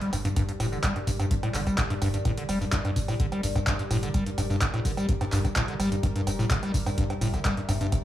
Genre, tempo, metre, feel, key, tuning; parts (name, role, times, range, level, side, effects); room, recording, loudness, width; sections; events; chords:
acid house; 127 BPM; 4/4; straight; G dorian; A4 = 441 Hz
dark analog pad; sustained chords; 0.0-8.0 s; G3 to E5; -36 LUFS; left 1 dB; chorus, phaser, sidechain pumping
acid bass, square; riff; 0.0-8.0 s; G2 to G3; -28 LUFS; equal; vintage 12-bit sampler grit, sidechain pumping, tape echo
punchy analog drum machine; drums; 0.0-8.0 s; cowbell, handclaps, hi-hat, tambourine; -32 LUFS; right 1 dB; overdrive, studio reverb
round analog bass; bass; 0.1-7.9 s; F1 to G1; -34 LUFS; equal; tube saturation, sidechain pumping
electronic kick drum; drums; 0.4-8.0 s; -28 LUFS; equal; studio reverb
light reverb; small room ambience; -24 LUFS; side -13 dB against mid
0.0-8.0 A section
0.0 Gm